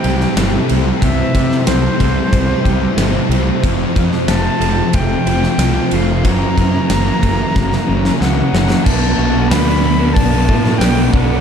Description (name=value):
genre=rock, shoegaze and dream pop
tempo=92 BPM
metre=4/4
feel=straight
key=unclear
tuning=A4 = 440 Hz
part: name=silver concert flute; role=melody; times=0.0-11.4 s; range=C5 to B5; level=-23 LUFS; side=equal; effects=slapback echo
part: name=ethereal airy pad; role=sustained chords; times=0.0-11.4 s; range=E4 to B5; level=-26 LUFS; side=right 1 dB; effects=ensemble chorus, built-in reverb
part: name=direct-recorded clean electric guitar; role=arpeggios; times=0.0-11.4 s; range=E3 to G4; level=-26 LUFS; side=left 9 dB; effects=analog chorus, slapback echo
part: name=overdriven electric guitar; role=riff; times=0.0-11.4 s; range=F2 to C4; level=-22 LUFS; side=left 1 dB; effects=none
part: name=overdriven semi-hollow guitar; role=riff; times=0.0-11.4 s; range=F2 to B4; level=-20 LUFS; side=right 11 dB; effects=reverse reverb
part: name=thick fuzz guitar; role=riff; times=0.0-11.4 s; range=F2 to E4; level=-21 LUFS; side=left 12 dB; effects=distortion, lush chorus
part: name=fuzz fingered electric bass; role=bass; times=0.0-11.4 s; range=F1 to C3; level=-18 LUFS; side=equal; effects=overdrive
part: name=big rock drum kit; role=drums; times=0.0-11.3 s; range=crash cymbal, hi-hat, kick drum, ride cymbal, snare drum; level=-19 LUFS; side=equal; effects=none
room=little or no reverb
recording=dark, warm production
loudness=-12 LUFS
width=side -7 dB against mid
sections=0.0-8.9 A section; 8.9-11.4 B section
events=drum fill 7.6-8.9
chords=0.0 C6; 3.6 F; 6.2 F#7; 8.9 Bm7